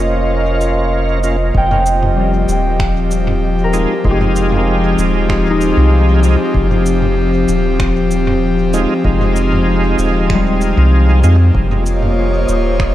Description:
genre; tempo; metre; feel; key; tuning
ambient dub; 96 BPM; 4/4; straight; F minor; A4 = 440 Hz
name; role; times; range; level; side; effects
airy breathy pad; sustained chords; 0.0-12.9 s; F3 to Eb5; -17 LUFS; left 2 dB; chorus
bright tonewheel organ; stabs; 0.0-11.4 s; Ab3 to F4; -20 LUFS; right 1 dB; overdrive, chorus vibrato, slow rotary speaker, dub echo
soft dub sub bass; bass; 0.0-12.9 s; Eb1 to F2; -14 LUFS; equal; none
organic electronic drum kit; drums; 0.6-12.9 s; finger snaps, shaker, toms; -25 LUFS; right 1 dB; dub echo
electronic kick drum; drums; 1.5-12.9 s; none; -19 LUFS; equal; none
concert harp; arpeggios; 1.6-11.6 s; G3 to G5; -21 LUFS; left 2 dB; tape echo
wind-like tuned noise texture; texture; 11.8-12.9 s; Eb5; -26 LUFS; right 2 dB; built-in reverb, ensemble chorus
room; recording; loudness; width
light reverb; none; -11 LUFS; side -13 dB against mid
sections
0.0-1.5 A section; 1.5-12.9 B section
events
none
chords
0.0 Bbm/F; 1.5 Fm7; 11.5 Bbm

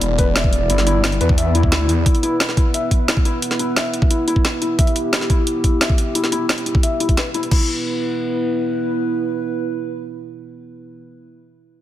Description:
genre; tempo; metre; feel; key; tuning
dark technical drum and bass; 176 BPM; 4/4; straight; E minor; A4 = 440 Hz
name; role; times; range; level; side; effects
dark analog pad; sustained chords; 0.0-11.0 s; B3 to D5; -23 LUFS; right 1 dB; lush chorus, sidechain pumping
snarling distorted saw bass; bass; 0.0-2.0 s; E1 to E2; -18 LUFS; equal; distortion, overdrive, sidechain pumping
drum and bass drum kit; drums; 0.0-7.6 s; crash cymbal, hi-hat, snare drum; -22 LUFS; equal; overdrive
felt-muted upright piano; arpeggios; 0.2-7.7 s; E4 to E5; -24 LUFS; left 4 dB; sidechain pumping, low-pass filter, digital delay
electronic kick drum; drums; 0.2-7.6 s; none; -17 LUFS; equal; overdrive
room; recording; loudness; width
light reverb, digital ambience; dense, heavily limited modern master; -16 LUFS; side -12 dB against mid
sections
0.0-7.5 A section; 7.5-10.2 B section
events
filter sweep on felt piano 0.0-7.5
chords
0.0 E5

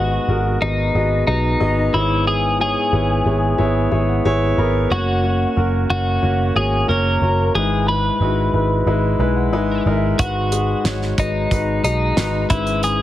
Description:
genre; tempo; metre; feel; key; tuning
piano-driven pop; 91 BPM; 4/4; straight; G# minor; A4 = 436 Hz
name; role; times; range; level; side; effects
twelve-string electric guitar; melody; 0.0-13.0 s; D#4 to B4; -21 LUFS; left 1 dB; none
warm concert grand piano; accompaniment; 0.0-13.0 s; G#2 to B5; -20 LUFS; left 1 dB; none
vintage muted picked electric bass; bass; 0.0-13.0 s; F#1 to B1; -20 LUFS; equal; none
damped 70s drum kit; drums; 10.2-13.0 s; hi-hat, kick drum, snare drum; -22 LUFS; right 1 dB; none
room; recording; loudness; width
light reverb, studio reverb; heavily compressed radio sound; -16 LUFS; side -13 dB against mid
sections
0.0-13.0 A section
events
grand piano fill 3.6-4.9, 8.9-10.2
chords
0.0 G#m7; 1.9 C#m7/G#; 4.9 F#; 7.5 Emaj7/G#; 10.2 G#m7; 12.5 C#m7/G#

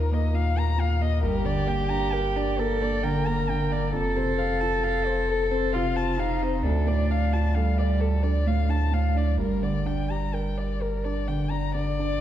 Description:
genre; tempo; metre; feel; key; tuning
neoclassical piano and strings; 66 BPM; 3/4; rubato; G minor; A4 = 440 Hz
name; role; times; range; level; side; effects
dark violin; melody; 0.0-12.2 s; A4 to Bb5; -31 LUFS; left 6 dB; none
warm cello; second line; 0.0-11.2 s; G3 to Bb4; -29 LUFS; right 2 dB; none
felt-muted upright piano; accompaniment; 0.0-12.2 s; D2 to D5; -29 LUFS; right 1 dB; none
pure sine sub bass; bass; 0.0-12.2 s; F1 to Eb2; -26 LUFS; equal; none
room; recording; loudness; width
moderate concert hall reverb, RT60 1.9 s; recorded in a church or concert hall; -23 LUFS; side -11 dB against mid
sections
0.0-12.2 A section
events
none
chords
0.0 Ebsus2; 1.2 Gm; 3.9 F; 6.6 Dm; 9.4 Gm

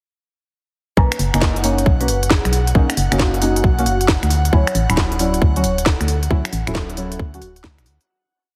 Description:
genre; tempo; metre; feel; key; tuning
UK garage, two-step garage; 135 BPM; 4/4; swing 66% on 16ths; unclear; A4 = 440 Hz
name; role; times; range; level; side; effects
vibraphone with medium mallets; melody; 1.0-7.5 s; F#4 to D5; -29 LUFS; equal; dub echo
airy breathy pad; sustained chords; 1.0-8.1 s; F#5; -32 LUFS; equal; chorus, sidechain pumping
deep mellow chord stab; stabs; 1.0-7.4 s; F#3 to F#4; -26 LUFS; equal; chorus, phaser, dub echo
organ-like FM bass; bass; 1.0-8.0 s; D1 to D2; -22 LUFS; equal; none
electronic kick drum; drums; 1.0-7.8 s; none; -20 LUFS; equal; none
garage drum kit; drums; 1.1-8.1 s; finger snaps, hi-hat, snare drum; -24 LUFS; equal; none
room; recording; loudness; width
light reverb; heavily compressed radio sound, multiband compression; -17 LUFS; mono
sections
1.0-8.1 drop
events
drop 1.0-8.1; fade-out 5.7-8.1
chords
1.0 Bmaj9; 4.3 Dmaj9

